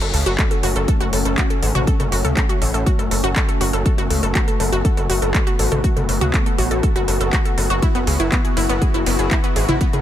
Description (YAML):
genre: melodic techno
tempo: 121 BPM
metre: 4/4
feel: straight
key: F# minor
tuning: A4 = 440 Hz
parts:
  - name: lush unison pad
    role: sustained chords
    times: 0.0-10.0 s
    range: A3 to F#4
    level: -25 LUFS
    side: left 2 dB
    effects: chorus, phaser, sidechain pumping
  - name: wide unison pluck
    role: arpeggios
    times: 0.0-10.0 s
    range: B3 to A4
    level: -24 LUFS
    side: equal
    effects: sidechain pumping, tape echo
  - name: gritty driven synth bass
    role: bass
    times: 0.0-10.0 s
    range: F#1 to C#2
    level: -21 LUFS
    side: equal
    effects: distortion, tube saturation, sidechain pumping
  - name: techno drum kit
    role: drums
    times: 0.0-10.0 s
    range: handclaps, hi-hat, ride cymbal, toms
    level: -25 LUFS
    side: equal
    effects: none
  - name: electronic kick drum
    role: drums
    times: 0.4-9.9 s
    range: none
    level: -19 LUFS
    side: equal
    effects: none
room: digital ambience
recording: none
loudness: -16 LUFS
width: side -11 dB against mid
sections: 0.0-10.0 A section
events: none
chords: 0.0 F#m; 7.8 Esus2/F#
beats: 0.39 0.88 1.38 | 1.87 2.37 2.87 3.36 | 3.86 4.35 4.85 5.34 | 5.84 6.34 6.83 7.33 | 7.82 8.32 8.82 9.31 | 9.81